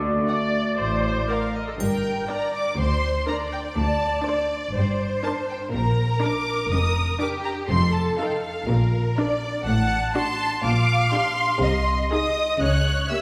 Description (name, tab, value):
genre	cinematic, playful, whimsical film cue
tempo	122 BPM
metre	4/4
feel	straight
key	G minor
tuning	A4 = 441 Hz
part	concert flute	second line	0.0-1.5 s	D5	-33 LUFS	equal	none
part	dark cor anglais	second line	0.0-1.5 s	D5	-33 LUFS	equal	none
part	warm clarinet	second line	0.0-1.5 s	F#4	-39 LUFS	equal	none
part	mellow French horn section	sustained chords	0.0-1.3 s	A3	-31 LUFS	equal	none
part	clear studio cello section	bass	0.0-13.0 s	D2 to D3	-30 LUFS	equal	none
part	warm studio double bass section	bass	0.0-13.0 s	F1 to D2	-29 LUFS	equal	none
part	rich studio violin section	melody	0.3-13.2 s	D5 to F#6	-30 LUFS	equal	none
part	rich studio violin section	second line	0.3-13.2 s	G4 to A5	-29 LUFS	equal	none
part	rich studio viola section	accompaniment	0.3-13.2 s	A#3 to D5	-32 LUFS	equal	none
part	triangle	percussion	1.8-2.8 s	none	-44 LUFS	equal	none
room	wet scoring stage reverb, RT60 2.1 s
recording	recorded in a church or concert hall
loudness	-23 LUFS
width	mono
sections	0.0-1.8 A section; 1.8-13.2 B section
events	none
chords	0.0 D; 1.8 Gm; 3.8 D5; 4.8 Gm; 5.7 Bb; 7.7 F7; 8.7 Bb; 9.7 D7/A; 10.6 Gm/Bb; 11.6 Ab/C; 12.6 C#dim7